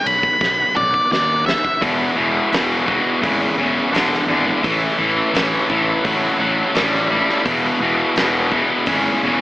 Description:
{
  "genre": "blues rock power trio and southern rock",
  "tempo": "85 BPM",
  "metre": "4/4",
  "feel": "straight",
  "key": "E major",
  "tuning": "A4 = 440 Hz",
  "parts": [
    { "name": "octave-fuzz lead guitar", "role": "melody", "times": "0.0-1.8 s", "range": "D5 to B5", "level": "-17 LUFS", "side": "equal", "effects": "distortion" },
    { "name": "overdriven tonewheel organ", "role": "sustained chords", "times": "0.0-9.4 s", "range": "D#3 to A4", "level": "-26 LUFS", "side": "right 1 dB", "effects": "slow rotary speaker, chorus vibrato" },
    { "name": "fuzz fingered electric bass", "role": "bass", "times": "0.1-9.4 s", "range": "E1 to D#2", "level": "-27 LUFS", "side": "equal", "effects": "overdrive" },
    { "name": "big rock drum kit", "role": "drums", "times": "0.1-9.0 s", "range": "hi-hat, kick drum, ride cymbal, snare drum, toms", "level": "-24 LUFS", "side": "equal", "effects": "none" },
    { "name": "tight distorted guitar", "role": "riff", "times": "1.8-9.4 s", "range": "E2 to G3", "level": "-16 LUFS", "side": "left 1 dB", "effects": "distortion" }
  ],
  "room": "moderate club ambience, RT60 0.5 s",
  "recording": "AM radio sound",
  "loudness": "-15 LUFS",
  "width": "side -17 dB against mid",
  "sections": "0.0-1.8 A section; 1.8-9.4 B section",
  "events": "lead electric guitar solo 0.0-1.8; drum fill 0.4-1.8",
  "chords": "0.0 B; 1.8 E; 4.6 A; 7.5 E"
}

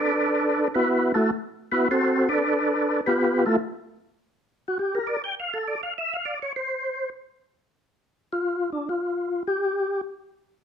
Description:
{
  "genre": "jazz",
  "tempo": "103 BPM",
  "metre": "4/4",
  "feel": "swing 69% on 8ths",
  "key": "G mixolydian",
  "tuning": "A4 = 440 Hz",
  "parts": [
    { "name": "percussive tonewheel organ", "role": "solo", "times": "0.0-10.0 s", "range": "A3 to G5", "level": "-22 LUFS", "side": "equal", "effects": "slow rotary speaker, overdrive, chorus vibrato" }
  ],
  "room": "moderate large studio reverb, RT60 0.9 s",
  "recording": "none",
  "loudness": "-22 LUFS",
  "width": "side -8 dB against mid",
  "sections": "0.0-7.7 A section; 7.7-10.6 A section",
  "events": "tonewheel organ solo 0.0-7.7, 7.7-10.6",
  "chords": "0.0 D13; 3.0 G13; 4.2 N.C."
}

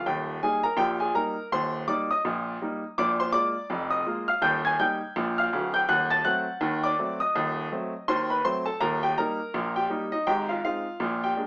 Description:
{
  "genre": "ragtime piano",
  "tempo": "82 BPM",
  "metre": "2/4",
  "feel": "swing 60% on 16ths",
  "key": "Eb major",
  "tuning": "A4 = 438 Hz",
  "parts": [
    { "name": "clear upright piano", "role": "solo", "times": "0.0-11.5 s", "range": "D1 to A6", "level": "-24 LUFS", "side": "equal", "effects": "none" }
  ],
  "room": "moderate studio reverb, RT60 0.5 s",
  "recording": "small speaker sound",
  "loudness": "-24 LUFS",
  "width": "side -25 dB against mid",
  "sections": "0.0-11.5 A section",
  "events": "none",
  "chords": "0.1 Eb; 3.0 Bb7; 4.4 Eb; 5.9 Ebdim7; 8.8 Eb; 10.3 Ab"
}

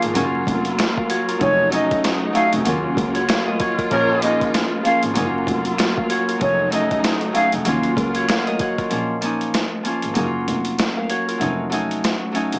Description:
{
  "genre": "hip hop, boom-bap hip-hop",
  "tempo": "96 BPM",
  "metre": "4/4",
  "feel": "swing 59% on 16ths",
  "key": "Bb harmonic minor",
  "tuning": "A4 = 439 Hz",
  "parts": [
    { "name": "breathy silver concert flute", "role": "melody", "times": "0.0-7.5 s", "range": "Db5 to F5", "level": "-19 LUFS", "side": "equal", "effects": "high-pass filter, low-pass filter, tape echo" },
    { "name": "Celtic harp", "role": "accompaniment", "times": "0.0-12.6 s", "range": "F3 to F5", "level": "-21 LUFS", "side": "equal", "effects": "high-pass filter, low-pass filter" },
    { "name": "warm studio string section", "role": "sustained chords", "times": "0.0-8.9 s", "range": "Db3 to F4", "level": "-26 LUFS", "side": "equal", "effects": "high-pass filter, low-pass filter" },
    { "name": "warm double bass", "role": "bass", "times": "0.0-12.6 s", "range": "F1 to Eb2", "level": "-26 LUFS", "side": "equal", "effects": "none" },
    { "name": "boom bap sampler-style drum kit", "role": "drums", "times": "0.0-12.6 s", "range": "hi-hat, kick drum, snare drum", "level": "-24 LUFS", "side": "equal", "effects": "none" },
    { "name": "finger snap", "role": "percussion", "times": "0.8-8.5 s", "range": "none", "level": "-30 LUFS", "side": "equal", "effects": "none" },
    { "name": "clear horn section", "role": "stabs", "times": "3.9-4.3 s", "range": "F3 to Bb4", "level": "-26 LUFS", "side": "equal", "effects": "high-pass filter, low-pass filter, tape echo" }
  ],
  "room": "light reverb",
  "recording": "vinyl crackle, small speaker sound",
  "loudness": "-17 LUFS",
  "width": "side -35 dB against mid",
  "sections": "0.0-8.9 A section; 8.9-12.6 B section",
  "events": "break 8.9-12.6",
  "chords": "0.2 Gbmaj7; 1.4 F7b9b13; 2.7 Ebm9; 3.9 Bbm; 5.2 Gbmaj7; 6.4 F7b9b13; 7.7 Ebm9; 8.9 Bbm; 10.2 Gbmaj7; 11.4 F7b9b13"
}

